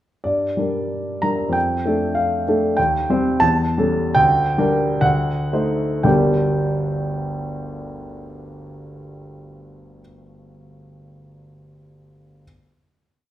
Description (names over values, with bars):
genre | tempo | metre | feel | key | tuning
classical, romantic character piece for solo piano | 55-101 BPM | 2/4 | rubato | G minor | A4 = 440 Hz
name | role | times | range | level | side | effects
warm concert grand piano | solo | 0.2-12.4 s | G1 to Bb5 | -18 LUFS | equal | none
room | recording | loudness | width
wet large studio reverb, RT60 1.2 s | heard from further back in the room | -17 LUFS | side -12 dB against mid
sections
0.2-6.1 A section; 6.1-10.2 final chord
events
slowing down 2.2-6.1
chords
0.2 Gm; 1.6 Dm/F; 2.8 Cm/Eb; 3.4 A7/E; 4.1 Gm/D; 5.0 D7b9; 6.1 Gm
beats
| 0.24 0.91 | 1.55 2.18 | 2.78 3.41 | 4.14 5.03 | 6.06 7.07 | 8.15 9.21